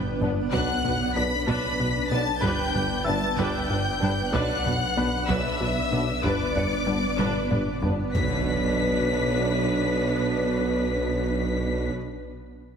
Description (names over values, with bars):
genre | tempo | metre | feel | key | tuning
cinematic, hybrid orchestral and electronic film score | 63 BPM (dotted quarters) | 6/8 | straight | B minor | A4 = 440 Hz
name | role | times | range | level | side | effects
granular cloud pad | sustained chords | 0.0-11.9 s | B3 to D5 | -31 LUFS | right 1 dB | built-in reverb
plucky analog bass | riff | 0.0-8.0 s | G2 to B3 | -31 LUFS | left 2 dB | none
saturated sub bass | bass | 0.0-11.9 s | G1 to B1 | -35 LUFS | equal | none
warm tuba | bass | 0.0-11.9 s | G1 to B1 | -32 LUFS | right 3 dB | none
warm symphonic viola section | accompaniment | 0.2-11.9 s | D4 to B4 | -33 LUFS | equal | none
mellow French horn section | sustained chords | 0.2-11.9 s | B3 to D4 | -35 LUFS | left 3 dB | none
dark symphonic double bass section | bass | 0.2-11.9 s | G1 to B1 | -34 LUFS | right 4 dB | none
rich symphonic cello section | bass | 0.2-11.9 s | G2 to B2 | -32 LUFS | right 3 dB | none
taiko ensemble | drums | 0.2-8.3 s | none | -34 LUFS | equal | none
warm symphonic violin section | melody | 0.5-11.9 s | D6 to B6 | -32 LUFS | left 3 dB | none
rich symphonic violin section | second line | 0.5-11.9 s | B4 to B5 | -33 LUFS | left 3 dB | none
felt-muted upright piano | texture | 1.5-8.2 s | D5 to C#7 | -38 LUFS | left 1 dB | tape echo
impact | sound effects | 8.1-10.1 s | none | -35 LUFS | equal | none
room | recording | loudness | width
wet concert hall reverb, RT60 2.1 s | heavily compressed radio sound | -22 LUFS | side -7 dB against mid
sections
0.0-8.1 A section; 8.1-12.0 B section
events
drum fill 0.0-0.5, 7.2-8.1; impact 8.1-10.1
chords
0.0 G; 0.5 Bm; 2.4 G; 4.3 Bm; 6.2 G; 8.1 Bm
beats
| 0.53 1.48 | 2.43 3.38 | 4.33 5.29 | 6.24 7.19 | 8.14 9.10 | 10.05 11.00